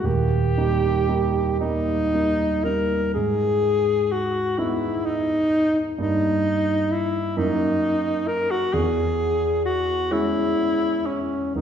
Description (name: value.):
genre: classical, romantic duo for alto saxophone and grand piano.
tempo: 38-45 BPM (dotted quarters).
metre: 6/8.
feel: rubato.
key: unclear.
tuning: A4 = 441 Hz.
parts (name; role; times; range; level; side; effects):
mellow alto saxophone; melody; 0.0-11.6 s; C#4 to A#4; -22 LUFS; left 1 dB; none.
dark concert grand piano; accompaniment; 0.0-11.6 s; D#1 to D#4; -24 LUFS; right 2 dB; none.
room: wet scoring stage reverb, RT60 1.6 s.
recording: heard from further back in the room.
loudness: -20 LUFS.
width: side -8 dB against mid.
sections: 0.0-3.1 A section; 3.1-11.6 B section.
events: none.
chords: 0.0 D#; 3.1 G#m; 6.0 D#/G; 7.4 D#m/F#; 8.7 C#m/E.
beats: | 0.05 1.60 | 3.14 4.58 | 5.99 7.36 | 8.72 10.11 | 11.54.